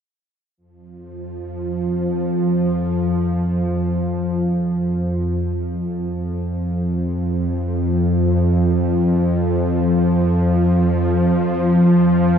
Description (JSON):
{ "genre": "ambient", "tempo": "free time", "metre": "none", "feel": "none", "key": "unclear", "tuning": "A4 = 440 Hz", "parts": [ { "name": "bowed-like drone", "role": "solo", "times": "1.1-12.4 s", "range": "F2 to F3", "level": "-17 LUFS", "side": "equal", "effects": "built-in reverb, tape echo" } ], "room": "wet cathedral reverb, RT60 6.4 s", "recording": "dark, warm production", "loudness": "-17 LUFS", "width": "side -8 dB against mid", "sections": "0.6-12.4 A section", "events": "none", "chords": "none" }